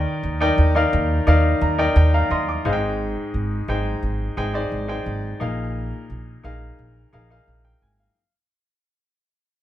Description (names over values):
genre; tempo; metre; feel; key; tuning
1980s-style pop; 87 BPM; 4/4; straight; unclear; A4 = 437 Hz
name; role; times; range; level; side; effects
clear baby grand piano; accompaniment; 0.0-8.3 s; Ab2 to D6; -22 LUFS; left 1 dB; none
upright bass; bass; 0.0-8.1 s; Ab1 to Eb2; -21 LUFS; equal; none
room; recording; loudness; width
light reverb; none; -19 LUFS; side -12 dB against mid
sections
0.0-2.6 A section; 2.6-8.2 B section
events
grand piano fill 1.3-2.6; fade-out 2.6-8.2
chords
0.0 Ebmaj7; 2.6 Abmaj7; 5.4 Bb7sus4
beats
0.58 1.27 1.96 | 2.65 3.33 4.03 4.71 | 5.40 6.09 6.78 7.47